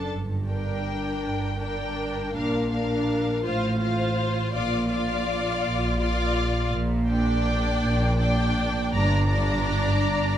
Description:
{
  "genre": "classical, slow romantic movement for string orchestra",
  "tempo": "54 BPM (dotted quarters)",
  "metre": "6/8",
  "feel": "rubato",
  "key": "unclear",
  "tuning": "A4 = 440 Hz",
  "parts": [
    { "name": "rich symphonic violin section", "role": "melody", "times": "0.0-10.4 s", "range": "F5 to Bb5", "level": "-32 LUFS", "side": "left 2 dB", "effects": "none" },
    { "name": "warm symphonic violin section", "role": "second line", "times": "0.0-10.4 s", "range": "Bb4 to D5", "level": "-30 LUFS", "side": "left 3 dB", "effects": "none" },
    { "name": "clear symphonic viola section", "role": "accompaniment", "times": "0.0-10.4 s", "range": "D4 to F4", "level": "-30 LUFS", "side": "equal", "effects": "none" },
    { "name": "dark symphonic cello section", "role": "bass", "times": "0.1-10.4 s", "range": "G2 to Bb2", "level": "-28 LUFS", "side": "right 1 dB", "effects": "none" },
    { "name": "rich symphonic double bass section", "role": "bass", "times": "0.1-10.4 s", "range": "G1 to Bb1", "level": "-28 LUFS", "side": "right 1 dB", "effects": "none" }
  ],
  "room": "light reverb",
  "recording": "close, detailed microphones",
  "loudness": "-22 LUFS",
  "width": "side -10 dB against mid",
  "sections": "0.0-10.4 A section",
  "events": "none",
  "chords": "0.1 Gm; 2.3 Bb; 3.4 F/A; 4.5 Bb; 6.7 Gm/Bb; 8.9 Gm"
}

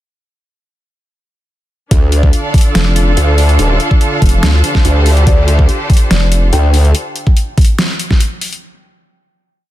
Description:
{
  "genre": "heavy wobble dubstep",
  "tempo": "143 BPM",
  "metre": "4/4",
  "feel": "half-time",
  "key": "D minor",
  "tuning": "A4 = 435 Hz",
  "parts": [
    { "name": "supersaw pad", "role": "sustained chords", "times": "1.9-6.9 s", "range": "D3 to A4", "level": "-21 LUFS", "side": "equal", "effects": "sidechain pumping, low-pass filter" },
    { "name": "formant-sweep wobble bass", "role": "bass", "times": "1.9-6.9 s", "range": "Eb1 to D2", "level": "-10 LUFS", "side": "equal", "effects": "chorus, overdrive" },
    { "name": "dubstep drum kit", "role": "drums", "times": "1.9-8.6 s", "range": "hi-hat, snare drum", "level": "-18 LUFS", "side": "equal", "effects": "overdrive, studio reverb" },
    { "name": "electronic kick drum", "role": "drums", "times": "1.9-8.2 s", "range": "none", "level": "-10 LUFS", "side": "equal", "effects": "overdrive, studio reverb" },
    { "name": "rich studio string section", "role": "texture", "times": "1.9-6.9 s", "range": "D4 to F5", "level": "-20 LUFS", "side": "right 1 dB", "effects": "sidechain pumping" },
    { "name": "vowel-sweep wobble bass", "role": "bass", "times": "2.8-6.5 s", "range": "F1 to D2", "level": "-11 LUFS", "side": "equal", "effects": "chorus, overdrive" },
    { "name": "felt-muted upright piano", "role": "melody", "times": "5.3-6.9 s", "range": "D5 to G5", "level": "-23 LUFS", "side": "left 5 dB", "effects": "dub echo" }
  ],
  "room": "little or no reverb",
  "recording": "dense, heavily limited modern master",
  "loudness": "-9 LUFS",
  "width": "side -14 dB against mid",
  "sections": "1.9-8.6 drop",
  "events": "drop 1.9-8.6",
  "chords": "1.9 Dm"
}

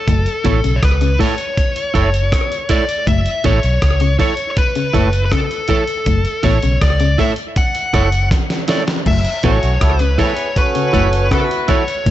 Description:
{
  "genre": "roots reggae",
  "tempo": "80 BPM",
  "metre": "4/4",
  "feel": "straight",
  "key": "F# minor",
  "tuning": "A4 = 440 Hz",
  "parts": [
    { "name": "smooth overdriven lead guitar", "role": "melody", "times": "0.0-12.1 s", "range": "A4 to F#5", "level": "-20 LUFS", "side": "left 2 dB", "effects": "tape echo, plate reverb" },
    { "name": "electric guitar at the edge of break-up", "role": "arpeggios", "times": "0.1-12.1 s", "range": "A2 to E3", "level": "-22 LUFS", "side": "left 8 dB", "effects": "none" },
    { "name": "vintage muted fingered electric bass", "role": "bass", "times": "0.1-12.1 s", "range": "F#1 to C#2", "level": "-16 LUFS", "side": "equal", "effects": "none" },
    { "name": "dusty soul sampler-style drum kit", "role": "drums", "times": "0.1-12.1 s", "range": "crash cymbal, hi-hat, kick drum, rim click, snare drum", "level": "-18 LUFS", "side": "equal", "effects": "slapback echo" },
    { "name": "electric guitar at the edge of break-up", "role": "accompaniment", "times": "0.4-11.8 s", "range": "E4 to C#5", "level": "-22 LUFS", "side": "right 6 dB", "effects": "tape echo, plate reverb" },
    { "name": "warm horn section", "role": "second line", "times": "9.4-11.8 s", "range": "F#3 to C#5", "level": "-20 LUFS", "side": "right 2 dB", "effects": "tape echo, plate reverb" }
  ],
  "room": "light reverb",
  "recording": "nothing above 8.0 kHz",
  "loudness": "-13 LUFS",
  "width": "side -13 dB against mid",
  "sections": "0.0-12.1 A section",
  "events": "drum fill 8.3-9.1",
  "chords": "0.0 F#m7"
}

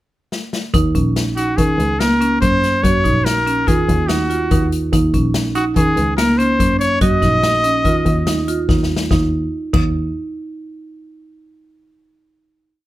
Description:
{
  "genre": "progressive instrumental, band music in an uneven meter",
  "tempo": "143 BPM",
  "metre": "5/4",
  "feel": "straight",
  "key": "Eb dorian",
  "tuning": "A4 = 445 Hz",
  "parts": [
    { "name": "street-band drum kit", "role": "drums", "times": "0.3-9.8 s", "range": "crash cymbal, hi-hat, kick drum, snare drum", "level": "-20 LUFS", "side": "left 1 dB", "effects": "none" },
    { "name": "marimba with hard mallets", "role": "arpeggios", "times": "0.7-9.9 s", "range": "Bb3 to Gb4", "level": "-20 LUFS", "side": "right 2 dB", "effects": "none" },
    { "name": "rich double bass", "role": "bass", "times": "0.7-9.9 s", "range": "Bb1 to Eb3", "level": "-19 LUFS", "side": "equal", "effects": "none" },
    { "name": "clear trumpet", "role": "melody", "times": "1.4-8.6 s", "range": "Gb4 to Eb5", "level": "-18 LUFS", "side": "equal", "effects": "none" }
  ],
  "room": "light reverb",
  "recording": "none",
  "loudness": "-14 LUFS",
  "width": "side -15 dB against mid",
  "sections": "0.0-0.7 pickup bar; 0.7-9.1 A section; 9.1-11.2 final note",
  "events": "drum fill 0.3-0.7, 8.7-9.1",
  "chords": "0.0 N.C.; 0.7 Ebm7; 9.1 N.C."
}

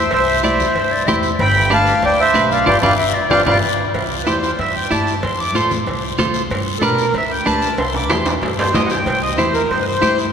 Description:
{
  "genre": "latin, cumbia",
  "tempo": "188 BPM",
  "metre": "4/4",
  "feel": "straight",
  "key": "C major",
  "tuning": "A4 = 437 Hz",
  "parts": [
    { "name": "accordion", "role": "melody", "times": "0.0-10.2 s", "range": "A4 to D6", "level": "-17 LUFS", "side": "equal", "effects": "none" },
    { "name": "clean electric guitar", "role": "accompaniment", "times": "0.0-10.3 s", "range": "D4 to D5", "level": "-21 LUFS", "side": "right 1 dB", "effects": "none" },
    { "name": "upright bass", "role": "bass", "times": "0.0-10.3 s", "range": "G1 to B2", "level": "-24 LUFS", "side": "equal", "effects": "none" },
    { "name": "congas", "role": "percussion", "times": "0.1-10.2 s", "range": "none", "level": "-26 LUFS", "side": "left 2 dB", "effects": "none" },
    { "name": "cowbell and timbales", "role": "percussion", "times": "0.1-9.9 s", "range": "none", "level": "-26 LUFS", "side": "right 1 dB", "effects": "none" },
    { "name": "guiro", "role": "percussion", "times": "0.1-10.3 s", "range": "none", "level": "-29 LUFS", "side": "left 7 dB", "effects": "none" },
    { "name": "breathy clarinet", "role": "second line", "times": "0.8-3.9 s", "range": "C5 to E5", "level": "-27 LUFS", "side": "left 4 dB", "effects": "none" }
  ],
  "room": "wet cathedral reverb, RT60 6.2 s",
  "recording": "recorded in a church or concert hall",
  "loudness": "-14 LUFS",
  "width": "side -7 dB against mid",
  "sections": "0.0-4.0 A section; 4.0-10.3 B section",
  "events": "drum fill 2.7-4.0, 7.8-9.1; band accent 2.7-4.0; accordion solo 4.0-10.3",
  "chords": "0.0 C; 1.4 G7; 4.0 C; 5.2 F; 6.5 G; 7.8 C"
}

